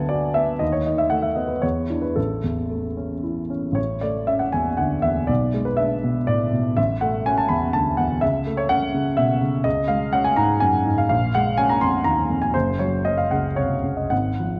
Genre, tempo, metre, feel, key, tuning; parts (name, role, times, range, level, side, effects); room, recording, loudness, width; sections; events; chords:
classical, romantic character piece for solo piano; 106-127 BPM; 3/4; rubato; A major; A4 = 440 Hz
warm baby grand piano; solo; 0.0-14.6 s; Gb1 to C6; -22 LUFS; equal
wet recital hall reverb, RT60 1.6 s; worn, warbling old tape, cassette tape, warbly pitch drift; -22 LUFS; mono
0.0-3.8 A section; 3.8-14.6 B section
0.0 Bm/D; 0.6 B7/D#; 1.6 C#m7/E; 2.2 A; 5.3 E7/B; 6.8 A; 8.2 A/C#; 9.6 Db5; 11.1 Bbm7; 12.5 Gb5